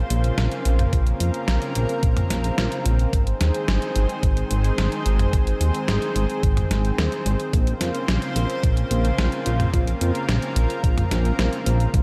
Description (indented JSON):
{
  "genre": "synthwave",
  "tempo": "109 BPM",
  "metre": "4/4",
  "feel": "straight",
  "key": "Bb minor",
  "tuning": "A4 = 438 Hz",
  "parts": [
    { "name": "lush unison pad", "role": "sustained chords", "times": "0.0-12.0 s", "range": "Db3 to C5", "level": "-29 LUFS", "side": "equal", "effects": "chorus, sidechain pumping" },
    { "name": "chorused synth bass", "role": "bass", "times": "0.0-12.0 s", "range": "Ab1 to F2", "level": "-24 LUFS", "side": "equal", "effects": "sidechain pumping" },
    { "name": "detuned 8-bit digital drum machine", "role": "drums", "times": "0.1-12.0 s", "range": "hi-hat, snare drum, toms", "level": "-30 LUFS", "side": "equal", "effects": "gated reverb" },
    { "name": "electronic kick drum", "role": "drums", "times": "0.9-12.0 s", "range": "none", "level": "-23 LUFS", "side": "equal", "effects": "none" }
  ],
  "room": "light reverb",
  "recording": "none",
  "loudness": "-22 LUFS",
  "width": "mono",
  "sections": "0.0-12.0 A section",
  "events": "none",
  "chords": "0.0 Bbmadd9; 3.1 Ab; 7.5 Bbmadd9",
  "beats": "0.38 | 0.93 1.48 2.03 2.58 | 3.13 3.68 4.23 4.78 | 5.33 5.88 6.43 6.98 | 7.53 8.09 8.63 9.19 | 9.74 10.29 10.84 11.39 | 11.94"
}